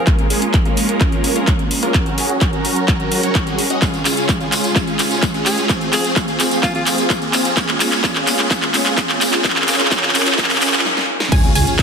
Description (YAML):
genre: EDM, festival progressive house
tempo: 128 BPM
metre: 4/4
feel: straight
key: unclear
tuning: A4 = 440 Hz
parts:
  - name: warm alto saxophone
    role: melody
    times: 0.0, 5.5-6.8 s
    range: F4 to Ab4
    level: -26 LUFS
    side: left 1 dB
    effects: ping-pong delay
  - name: muted studio string section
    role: sustained chords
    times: 0.0-11.3 s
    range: Db3 to Bb4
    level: -26 LUFS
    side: right 3 dB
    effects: sidechain pumping
  - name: big supersaw lead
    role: riff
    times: 0.0-11.8 s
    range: Ab3 to Eb5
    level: -20 LUFS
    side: equal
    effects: phaser, sidechain pumping, low-pass filter, ping-pong delay
  - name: detuned saw bass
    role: bass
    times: 0.0-11.8 s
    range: F1 to Gb2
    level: -30 LUFS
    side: equal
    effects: none
  - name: riser, noise sweep and impact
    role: sound effects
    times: 0.8-11.8 s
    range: none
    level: -26 LUFS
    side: equal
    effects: none
  - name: big-room dance drum kit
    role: drums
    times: 0.1-11.8 s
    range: crash cymbal, handclaps, hi-hat, snare drum, tambourine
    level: -18 LUFS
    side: equal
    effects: none
  - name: electronic kick drum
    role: drums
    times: 0.1-11.8 s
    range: none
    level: -18 LUFS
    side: equal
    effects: none
  - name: wide unison pluck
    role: arpeggios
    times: 11.3-11.8 s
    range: Ab5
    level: -21 LUFS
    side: right 2 dB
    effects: sidechain pumping
room: moderate lush hall reverb, RT60 2.2 s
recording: dense, heavily limited modern master, high-pass filter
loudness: -14 LUFS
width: side -6 dB against mid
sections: 0.0-11.3 A section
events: build-up 0.0-11.3; drum fill 0.0-10.9, 10.9-11.3; filter sweep on supersaw synth 0.0-11.3; filter sweep 0.0-11.3; riser 0.8-10.9; noise sweep 9.4-11.3; break 10.9-11.3; impact 11.3-11.8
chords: 0.1 Bbm7; 1.9 Gb; 3.8 Db; 5.7 Fm; 7.6 Bbm7; 9.4 Gb; 11.3 Db